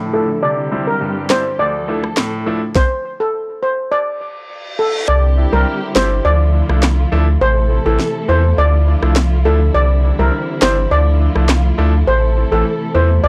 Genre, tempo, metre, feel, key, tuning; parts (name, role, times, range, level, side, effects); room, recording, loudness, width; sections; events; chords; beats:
dancehall; 103 BPM; 4/4; straight; D minor; A4 = 440 Hz
bright grand piano; accompaniment; 0.0-13.1 s; D2 to G4; -24 LUFS; equal; low-pass filter
dark studio string section; sustained chords; 0.0-13.3 s; C3 to A4; -26 LUFS; equal; sidechain pumping, low-pass filter
downlifter and reverse cymbal; sound effects; 4.4-5.1 s; -31 LUFS; equal
steel pan; melody; 0.1-13.3 s; A4 to D5; -20 LUFS; equal; low-pass filter
island pop drum kit; drums; 1.3-11.6 s; handclaps, kick drum, rim click, snare drum; -19 LUFS; equal
sub bass with octave; bass; 5.1-13.3 s; G1 to E2; -16 LUFS; equal; transformer saturation
studio reverb; dry, gritty hardware recording; -15 LUFS; mono
0.0-5.1 A section; 5.1-13.3 B section
reverse cymbal 4.4-5.1; kick muted 5.1-13.3
0.4 Cadd9; 1.6 Dmadd9; 2.8 N.C.; 5.1 Cadd9; 6.2 Dmadd9; 7.4 Am; 8.6 Dmadd9; 9.7 Cadd9; 10.9 Dmadd9; 12.1 Am
| 0.42 1.01 1.59 2.17 | 2.75 3.34 3.92 4.50 | 5.08 5.67 6.25 6.83 | 7.42 8.00 8.58 9.16 | 9.75 10.33 10.91 11.49 | 12.08 12.66 13.24